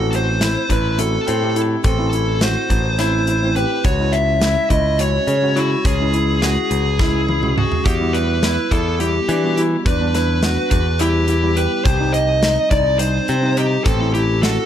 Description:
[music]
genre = progressive instrumental, band music in an uneven meter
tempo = 210 BPM (eighths)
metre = 7/8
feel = straight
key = A dorian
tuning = A4 = 440 Hz
[part]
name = dark smooth lead guitar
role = melody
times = 0.0-14.7 s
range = F#4 to E5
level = -20 LUFS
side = equal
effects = overdrive, ping-pong delay
[part]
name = overdriven tine electric piano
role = accompaniment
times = 0.0-14.7 s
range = G3 to G4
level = -25 LUFS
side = right 2 dB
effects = none
[part]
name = bright concert grand piano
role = arpeggios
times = 0.0-14.7 s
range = C4 to G#4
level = -24 LUFS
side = left 3 dB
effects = none
[part]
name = modern bright picked electric bass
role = bass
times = 0.0-14.6 s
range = A1 to E3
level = -20 LUFS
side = equal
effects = none
[part]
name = modern studio drum kit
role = drums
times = 0.1-14.6 s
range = hi-hat, kick drum, snare drum, toms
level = -20 LUFS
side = equal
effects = none
[sound]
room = light reverb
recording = none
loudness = -15 LUFS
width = side -10 dB against mid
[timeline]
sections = 0.0-14.7 A section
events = drum fill 7.0-7.9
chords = 0.0 Am; 3.9 C#m; 7.9 Em; 11.9 Cm; 13.9 Am

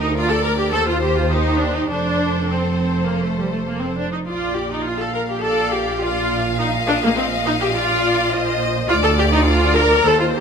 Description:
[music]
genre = quick classical-period movement for string orchestra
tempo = 104 BPM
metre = 4/4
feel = straight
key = Bb major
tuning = A4 = 440 Hz
[part]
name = rich studio violin section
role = melody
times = 0.0-10.4 s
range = Bb4 to F5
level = -27 LUFS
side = left 5 dB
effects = none
[part]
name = clear chamber violin section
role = second line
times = 0.0-10.4 s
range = G4 to F5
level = -25 LUFS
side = left 3 dB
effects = none
[part]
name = clear studio viola section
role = accompaniment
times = 0.0-10.4 s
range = G3 to Bb4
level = -19 LUFS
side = equal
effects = none
[part]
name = rich chamber cello section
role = bass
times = 0.0-10.4 s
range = D2 to Bb2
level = -24 LUFS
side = right 4 dB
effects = none
[part]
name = rich chamber double bass section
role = bass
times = 0.0-10.4 s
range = F1 to Eb2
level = -25 LUFS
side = right 2 dB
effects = none
[sound]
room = moderate recital hall reverb, RT60 1.3 s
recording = none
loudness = -16 LUFS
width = side -6 dB against mid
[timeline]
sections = 0.0-10.4 A section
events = none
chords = 0.0 Bb/D; 0.8 Cm/Eb; 1.9 F; 4.3 Bb; 6.6 F5/Bb; 8.9 Dm

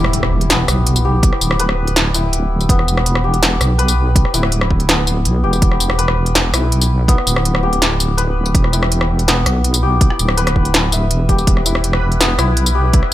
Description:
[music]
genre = half-time drum and bass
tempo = 164 BPM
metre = 4/4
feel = half-time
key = E minor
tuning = A4 = 440 Hz
[part]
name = santur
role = arpeggios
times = 0.0-13.1 s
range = B3 to E5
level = -20 LUFS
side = left 3 dB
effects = dub echo
[part]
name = deep soft wobble bass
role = bass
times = 0.0-13.1 s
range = D1 to B1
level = -16 LUFS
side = equal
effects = chorus
[part]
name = industrial drum kit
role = drums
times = 0.0-13.1 s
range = hi-hat, rim click, snare drum, tambourine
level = -17 LUFS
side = equal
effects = none
[part]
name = impact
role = sound effects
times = 0.0-1.2 s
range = none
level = -24 LUFS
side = equal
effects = none
[part]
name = electronic kick drum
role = drums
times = 1.2-13.0 s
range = none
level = -14 LUFS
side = equal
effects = overdrive
[part]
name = backwards swelling texture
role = texture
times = 11.6-13.1 s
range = B4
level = -27 LUFS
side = right 2 dB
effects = built-in reverb
[sound]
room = light reverb, digital ambience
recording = none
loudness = -12 LUFS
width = side -14 dB against mid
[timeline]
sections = 0.0-13.1 A section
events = impact 0.0-1.2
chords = 0.0 Em

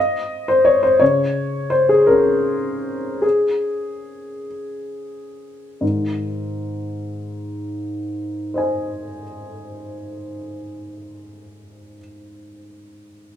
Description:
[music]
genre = neoclassical minimalist piano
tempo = 43-58 BPM (dotted quarters)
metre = 6/8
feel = rubato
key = Ab major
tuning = A4 = 440 Hz
[part]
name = dark upright piano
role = solo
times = 0.0-13.4 s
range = Ab2 to Ab5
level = -19 LUFS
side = left 1 dB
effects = none
[sound]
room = wet large studio reverb, RT60 1.2 s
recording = band playing live in one room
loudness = -17 LUFS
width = side -10 dB against mid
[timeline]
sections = 0.0-5.8 A section; 5.8-11.2 B section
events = slowing down 0.0-5.8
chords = 0.0 Ab (rootless); 1.0 N.C.; 5.8 Ab

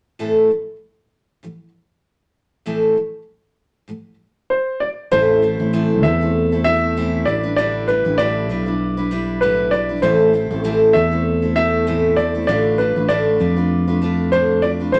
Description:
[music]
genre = acoustic pop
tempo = 98 BPM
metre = 4/4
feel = swing 55% on 16ths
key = A minor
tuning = A4 = 440 Hz
[part]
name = picked steel-string acoustic guitar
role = accompaniment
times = 0.2-15.0 s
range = A2 to B4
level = -21 LUFS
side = equal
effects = none
[part]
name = warm upright piano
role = melody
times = 4.5-15.0 s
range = B4 to E5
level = -22 LUFS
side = equal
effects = none
[part]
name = fretless electric bass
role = bass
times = 5.1-15.0 s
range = A1 to F2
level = -23 LUFS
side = equal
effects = none
[sound]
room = moderate studio reverb, RT60 0.7 s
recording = none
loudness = -18 LUFS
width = mono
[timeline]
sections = 0.2-5.1 A section; 5.1-15.0 B section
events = none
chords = 0.2 Am; 7.3 Em7/A; 10.0 Am; 12.5 Bdim/A

